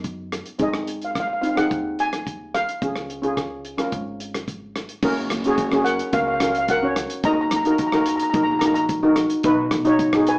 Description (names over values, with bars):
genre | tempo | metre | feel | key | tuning
calypso | 109 BPM | 4/4 | straight | F# major | A4 = 439 Hz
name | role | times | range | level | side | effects
steel pan | accompaniment | 0.0-10.4 s | B#3 to C#5 | -20 LUFS | equal | none
upright bass | bass | 0.0-10.4 s | F#1 to F#2 | -32 LUFS | equal | none
damped 70s drum kit | drums | 0.0-10.4 s | crash cymbal, hi-hat, kick drum, rim click | -28 LUFS | equal | none
steel pan | melody | 0.6-10.4 s | A#4 to A#5 | -23 LUFS | equal | none
room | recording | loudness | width
wet small room reverb, RT60 0.5 s | heard from further back in the room, small speaker sound | -19 LUFS | side -26 dB against mid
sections
0.0-5.0 A section; 5.0-10.4 B section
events
none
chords
0.0 N.C.; 0.6 G#; 2.8 C#; 5.0 F#; 7.2 D#m; 9.4 B